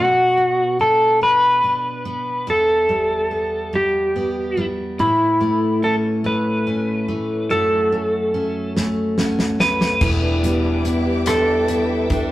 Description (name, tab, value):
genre	six-eight pop ballad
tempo	48 BPM (dotted quarters)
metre	6/8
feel	straight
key	unclear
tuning	A4 = 439 Hz
part	clean lap steel guitar	melody	0.0-12.3 s	E4 to B4	-18 LUFS	equal	none
part	picked steel-string acoustic guitar	accompaniment	0.0-12.3 s	E2 to F#4	-23 LUFS	equal	none
part	fingerpicked plugged-in steel-string acoustic guitar	arpeggios	5.0-12.3 s	E3 to G4	-25 LUFS	left 2 dB	none
part	damped 70s drum kit	drums	8.8-12.3 s	crash cymbal, hi-hat, kick drum, rim click, snare drum	-23 LUFS	equal	none
part	dark studio string section	sustained chords	10.0-12.3 s	B4 to D6	-27 LUFS	equal	none
part	vintage muted fingered electric bass	bass	10.0-12.3 s	E1	-26 LUFS	equal	none
room	wet stone room reverb, RT60 1.3 s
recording	rough rehearsal-room recording, tube saturation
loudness	-16 LUFS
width	side -15 dB against mid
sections	0.0-10.0 A section; 10.0-12.3 B section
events	drum fill 8.8-10.0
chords	0.0 Bm; 2.5 Em; 5.0 A; 7.5 F#m; 10.0 Em7